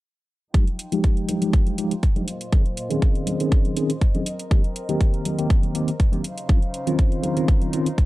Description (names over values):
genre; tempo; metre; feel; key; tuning
filtered disco house; 121 BPM; 4/4; swing 53% on 16ths; F minor; A4 = 438 Hz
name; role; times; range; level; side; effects
bell-like tine electric piano; accompaniment; 0.5-7.9 s; Eb3 to Ab4; -24 LUFS; equal; fast stereo tremolo, phaser, sidechain pumping, low-pass filter
rich chamber string section; sustained chords; 0.5-8.1 s; Bb2 to G5; -34 LUFS; equal; sidechain pumping, low-pass filter
electronic hi-hat; drums; 0.5-8.1 s; none; -35 LUFS; right 1 dB; sidechain pumping on hats
electronic kick drum; drums; 0.5-8.1 s; none; -18 LUFS; equal; none
congas and tambourine; percussion; 0.5-8.1 s; none; -33 LUFS; left 1 dB; sidechain pumping on perc, low-pass filter on perc
room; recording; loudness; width
digital ambience; dry, gritty hardware recording, cassette tape; -19 LUFS; side -18 dB against mid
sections
0.5-8.1 A section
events
filter sweep 0.5-8.1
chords
0.5 Fm9; 2.3 Bbm11; 4.3 Cm7; 6.2 Dbmaj9